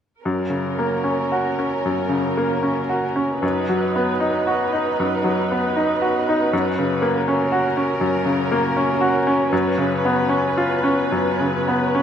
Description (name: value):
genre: classical, romantic movement for piano and orchestra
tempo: 71-82 BPM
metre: 4/4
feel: rubato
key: F# major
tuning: A4 = 440 Hz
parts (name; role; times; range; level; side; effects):
- rich symphonic viola section; accompaniment; 0.2-12.0 s; C#4 to B4; -24 LUFS; right 1 dB; none
- bright grand piano; melody; 0.3-12.0 s; F#2 to F#4; -19 LUFS; equal; none
room: wet scoring stage reverb, RT60 1.8 s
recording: none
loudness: -18 LUFS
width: side -8 dB against mid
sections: 0.2-12.0 A section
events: none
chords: 0.2 F#; 3.4 B/F#; 6.5 F#; 9.5 C#7/F#